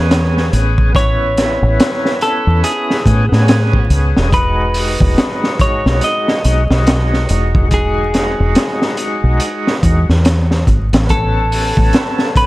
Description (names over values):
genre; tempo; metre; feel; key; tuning
trip hop; 71 BPM; 4/4; swing 60% on 16ths; unclear; A4 = 440 Hz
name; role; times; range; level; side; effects
clean electric guitar; melody; 0.0-12.5 s; G#4 to D#5; -19 LUFS; left 1 dB; tape echo
overdriven tonewheel organ; accompaniment; 0.0-12.5 s; G#3 to A4; -20 LUFS; equal; slow rotary speaker, tremolo, tape echo
deep dub fingered electric bass; bass; 0.0-11.9 s; E1 to A2; -14 LUFS; equal; none
crunchy breakbeat drum kit; drums; 0.1-12.5 s; hi-hat, kick drum, snare drum; -15 LUFS; equal; none
room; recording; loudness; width
little or no reverb; vinyl crackle; -11 LUFS; side -18 dB against mid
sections
0.0-12.5 A section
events
none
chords
0.0 Amaj7; 4.3 Emaj7; 11.1 A